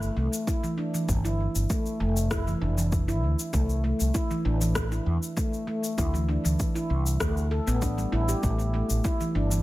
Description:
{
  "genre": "organic downtempo",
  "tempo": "98 BPM",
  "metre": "4/4",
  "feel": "straight",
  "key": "unclear",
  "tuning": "A4 = 441 Hz",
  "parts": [
    { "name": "mellow fretless electric bass", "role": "bass", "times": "0.0-9.6 s", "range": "F1 to E2", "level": "-26 LUFS", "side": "equal", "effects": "analog chorus, sidechain pumping" },
    { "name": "electronic shaker and rim click", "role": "drums", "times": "0.0-9.6 s", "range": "none", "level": "-35 LUFS", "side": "left 2 dB", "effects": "overdrive" },
    { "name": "handpan", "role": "arpeggios", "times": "0.2-9.6 s", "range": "E3 to A4", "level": "-29 LUFS", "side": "equal", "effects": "digital delay" },
    { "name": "electronic kick drum", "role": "drums", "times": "0.5-9.2 s", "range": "none", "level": "-29 LUFS", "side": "equal", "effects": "overdrive" }
  ],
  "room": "little or no reverb",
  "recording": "none",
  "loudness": "-24 LUFS",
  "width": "side -17 dB against mid",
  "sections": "0.0-9.6 A section",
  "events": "none",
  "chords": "0.0 N.C.; 1.1 G5; 3.5 C6; 6.0 D5; 8.4 A7(no3)"
}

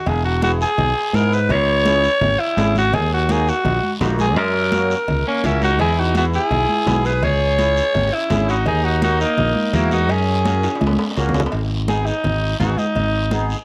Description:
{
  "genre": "latin, cumbia",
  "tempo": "168 BPM",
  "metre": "4/4",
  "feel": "straight",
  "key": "G# minor",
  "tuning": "A4 = 444 Hz",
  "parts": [
    { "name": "raspy alto saxophone", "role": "melody", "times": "0.0-13.5 s", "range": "C#4 to C#5", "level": "-22 LUFS", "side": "equal", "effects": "none" },
    { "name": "fingered electric bass", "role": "bass", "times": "0.1-13.5 s", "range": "E1 to G#2", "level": "-22 LUFS", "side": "equal", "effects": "none" },
    { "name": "congas", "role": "percussion", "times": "0.1-13.5 s", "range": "none", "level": "-26 LUFS", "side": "equal", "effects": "none" },
    { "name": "cowbell and timbales", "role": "percussion", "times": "0.1-13.5 s", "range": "none", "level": "-34 LUFS", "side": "equal", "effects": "none" },
    { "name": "guiro", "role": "percussion", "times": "0.1-13.6 s", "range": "none", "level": "-36 LUFS", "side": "equal", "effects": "none" },
    { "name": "accordion", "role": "accompaniment", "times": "0.4-13.6 s", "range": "A#3 to G#4", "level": "-30 LUFS", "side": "equal", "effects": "light tremolo tuning" },
    { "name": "electric guitar at the edge of break-up", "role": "second line", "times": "5.3-11.2 s", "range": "A#3 to G#4", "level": "-28 LUFS", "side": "equal", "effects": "spring reverb" }
  ],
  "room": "light reverb, studio ambience",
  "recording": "none",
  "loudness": "-18 LUFS",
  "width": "mono",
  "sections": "0.1-11.5 A section; 11.5-13.6 B section",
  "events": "drum fill 10.6-11.5; alto saxophone solo 11.5-13.6",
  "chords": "0.1 E; 1.5 C#m; 2.9 D#m; 4.4 F#; 5.8 E; 7.2 C#m; 8.7 D#m; 10.1 F#add9; 11.5 G#m"
}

